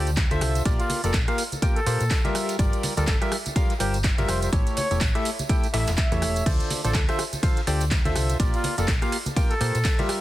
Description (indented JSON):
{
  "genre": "piano house",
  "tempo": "124 BPM",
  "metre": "4/4",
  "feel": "swing 58% on 16ths",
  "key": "unclear",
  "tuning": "A4 = 441 Hz",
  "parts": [
    { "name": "mellow trumpet", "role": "melody", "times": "0.0-10.0 s", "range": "F4 to E5", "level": "-32 LUFS", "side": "equal", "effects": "tape echo" },
    { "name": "percussive organ stab", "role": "riff", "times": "0.0-10.2 s", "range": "D3 to G5", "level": "-28 LUFS", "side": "equal", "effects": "chorus, sidechain pumping, tape echo" },
    { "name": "hollow-body short-scale fingered electric bass", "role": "bass", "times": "0.0-9.8 s", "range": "E1 to Bb2", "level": "-26 LUFS", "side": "equal", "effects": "sidechain pumping" },
    { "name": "house drum kit", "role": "drums", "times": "0.1-10.2 s", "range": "crash cymbal, handclaps, hi-hat, ride cymbal, rim click, tambourine", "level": "-30 LUFS", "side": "right 1 dB", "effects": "none" },
    { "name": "tambourine and congas", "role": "percussion", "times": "0.1-10.1 s", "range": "none", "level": "-36 LUFS", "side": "right 1 dB", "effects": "none" },
    { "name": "dusty soul sampler-style drum kit", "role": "drums", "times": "0.2-10.2 s", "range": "ride cymbal, snare drum", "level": "-40 LUFS", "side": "right 2 dB", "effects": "none" },
    { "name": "electronic kick drum", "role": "drums", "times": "0.2-10.0 s", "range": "none", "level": "-23 LUFS", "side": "equal", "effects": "none" }
  ],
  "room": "little or no reverb",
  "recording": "dense, heavily limited modern master",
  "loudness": "-21 LUFS",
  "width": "side -15 dB against mid",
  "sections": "0.0-10.2 A section",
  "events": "none",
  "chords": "0.0 Dm7; 0.7 Bb6; 4.5 A7; 6.5 Dm7; 8.4 Bb6",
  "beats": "0.17 | 0.66 1.14 1.62 2.11 | 2.59 3.08 3.56 4.04 | 4.53 5.01 5.49 5.98 | 6.46 6.95 7.43 7.91 | 8.40 8.88 9.37 9.85"
}